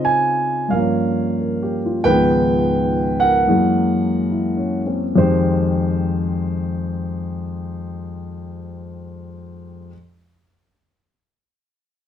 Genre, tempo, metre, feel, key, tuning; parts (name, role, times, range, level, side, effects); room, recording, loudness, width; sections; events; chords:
solo jazz; 66-92 BPM; 4/4; swing 66% on 8ths, rubato; F minor; A4 = 439 Hz
dark concert grand piano; solo; 0.0-9.9 s; Db2 to Ab5; -17 LUFS; equal
moderate studio reverb, RT60 0.8 s; dark, warm production; -16 LUFS; side -9 dB against mid
0.0-5.2 A section; 5.2-8.7 B section
slowing down 0.0-5.2
0.0 Dbmaj9; 0.7 Gm7b5; 2.1 Db13; 3.5 Gb9; 5.2 Fm9